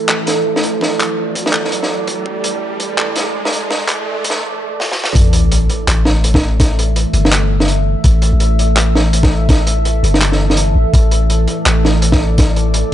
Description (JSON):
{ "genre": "half-time drum and bass", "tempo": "166 BPM", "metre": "4/4", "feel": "swing 58% on 16ths, half-time", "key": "unclear", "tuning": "A4 = 440 Hz", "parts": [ { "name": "deep dark ambient pad", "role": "sustained chords", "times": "0.0-12.9 s", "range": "E3 to E5", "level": "-20 LUFS", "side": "right 2 dB", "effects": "chorus, built-in reverb, sidechain pumping" }, { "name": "riser and sub drop", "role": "sound effects", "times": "0.0-6.6 s", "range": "none", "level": "-24 LUFS", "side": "equal", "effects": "none" }, { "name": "long sustained 808-style bass", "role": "bass", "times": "0.1-12.8 s", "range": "G1 to A1", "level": "-14 LUFS", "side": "equal", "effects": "high-pass filter" }, { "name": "crunchy breakbeat drum kit", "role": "drums", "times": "0.1-12.8 s", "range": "handclaps, hi-hat, snare drum", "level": "-17 LUFS", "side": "equal", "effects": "high-pass filter on hats, high-pass filter on snare, high-pass filter on room" }, { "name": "electronic kick drum", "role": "drums", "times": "0.8-12.5 s", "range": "none", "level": "-13 LUFS", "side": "equal", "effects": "high-pass filter on kick" } ], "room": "light reverb, small room ambience", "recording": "high-pass filter, nothing above 10.7 kHz", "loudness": "-12 LUFS", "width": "side -12 dB against mid", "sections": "0.0-5.2 A section; 5.2-12.9 B section", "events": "build-up 0.0-5.2; riser 0.0-4.4; drum fill 4.8-5.2; drop 5.2-12.9; impact 5.2-6.6", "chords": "0.0 A5", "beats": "0.09 0.45 | 0.82 1.18 1.54 1.90 | 2.26 2.62 2.98 3.35 | 3.71 4.07 4.43 4.79 | 5.15 5.51 5.88 6.24 | 6.60 6.96 7.32 7.68 | 8.04 8.41 8.77 9.13 | 9.49 9.85 10.21 10.57 | 10.94 11.30 11.66 12.02 | 12.38 12.74" }